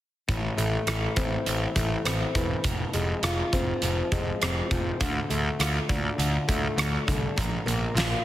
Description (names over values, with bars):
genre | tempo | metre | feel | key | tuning
quiet-loud alternative rock | 102 BPM | 4/4 | straight | A phrygian | A4 = 436 Hz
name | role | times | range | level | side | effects
fingerpicked steel-string acoustic guitar | arpeggios | 0.3-8.2 s | F2 to F4 | -30 LUFS | left 2 dB | tape echo
fuzz picked electric bass | bass | 0.3-8.1 s | E1 to D2 | -28 LUFS | equal | overdrive
huge arena drum kit | drums | 0.3-8.1 s | hi-hat, kick drum, rim click, snare drum | -28 LUFS | right 1 dB | none
room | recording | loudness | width
studio ambience | heavily compressed radio sound, multiband compression | -24 LUFS | side -13 dB against mid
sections
0.3-8.2 A section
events
none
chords
0.3 Am; 2.6 Fm; 5.0 Dm; 7.4 Bb5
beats
| 0.29 0.88 1.47 2.06 | 2.65 3.24 3.83 4.42 | 5.01 5.60 6.19 6.78 | 7.37 7.96